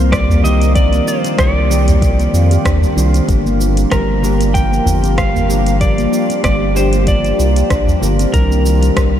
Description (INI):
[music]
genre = organic downtempo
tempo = 95 BPM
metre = 4/4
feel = swing 55% on 16ths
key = G minor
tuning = A4 = 440 Hz
[part]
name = warbly tape-like pad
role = sustained chords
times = 0.0-9.2 s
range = Eb3 to Bb4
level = -22 LUFS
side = left 4 dB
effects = chorus, built-in reverb, sidechain pumping
[part]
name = handpan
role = arpeggios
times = 0.0-9.2 s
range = F3 to G4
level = -20 LUFS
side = right 1 dB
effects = ping-pong delay
[part]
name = round analog bass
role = bass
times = 0.0-9.2 s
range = G1 to F2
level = -14 LUFS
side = equal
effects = sidechain pumping
[part]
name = afro-pop drum kit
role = drums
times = 0.0-9.1 s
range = hi-hat, rim click, shaker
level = -24 LUFS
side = right 2 dB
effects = studio reverb
[part]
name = electric slide guitar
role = melody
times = 0.1-9.2 s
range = Bb4 to G5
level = -20 LUFS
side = equal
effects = ping-pong delay
[part]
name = electronic kick drum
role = drums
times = 0.1-9.1 s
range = none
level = -17 LUFS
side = equal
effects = studio reverb
[part]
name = udu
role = percussion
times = 0.3-8.0 s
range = none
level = -17 LUFS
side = equal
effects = none
[part]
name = mellow electric guitar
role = accompaniment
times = 0.4-9.2 s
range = Eb3 to C5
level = -24 LUFS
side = equal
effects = lush chorus, sidechain pumping, ping-pong delay
[sound]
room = light reverb, digital ambience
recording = none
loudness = -11 LUFS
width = side -10 dB against mid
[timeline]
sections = 0.0-9.2 A section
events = none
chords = 0.0 Cm9; 3.3 Gm7; 8.3 Cm9